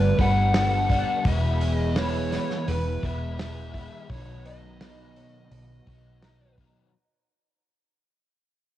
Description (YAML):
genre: rock, shoegaze and dream pop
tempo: 84 BPM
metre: 4/4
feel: straight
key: unclear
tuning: A4 = 438 Hz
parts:
  - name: fuzz lead guitar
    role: melody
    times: 0.0-6.5 s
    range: B4 to F#5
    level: -29 LUFS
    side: equal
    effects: distortion
  - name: picked twelve-string acoustic guitar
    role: arpeggios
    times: 0.0-6.9 s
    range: F#3 to A4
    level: -37 LUFS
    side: equal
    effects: ensemble chorus, cassette tape, analog delay
  - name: clean electric guitar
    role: riff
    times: 0.0-6.9 s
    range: B2 to B4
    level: -32 LUFS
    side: right 6 dB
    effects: reverse reverb, cassette tape
  - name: overdriven semi-hollow guitar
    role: riff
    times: 0.0-6.9 s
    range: B2 to E4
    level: -32 LUFS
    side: left 8 dB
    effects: analog chorus, cassette tape
  - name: vintage muted fingered electric bass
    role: bass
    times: 0.0-6.7 s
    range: E1 to B1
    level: -26 LUFS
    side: equal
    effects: transformer saturation
  - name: loose indie drum kit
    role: drums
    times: 0.2-6.7 s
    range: hi-hat, kick drum, snare drum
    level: -29 LUFS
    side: equal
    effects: none
room: light reverb, small room ambience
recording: home recording on cassette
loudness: -22 LUFS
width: side -13 dB against mid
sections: 0.0-6.9 A section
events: fade-out 0.0-6.9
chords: 0.0 Gadd9; 1.3 E; 4.1 B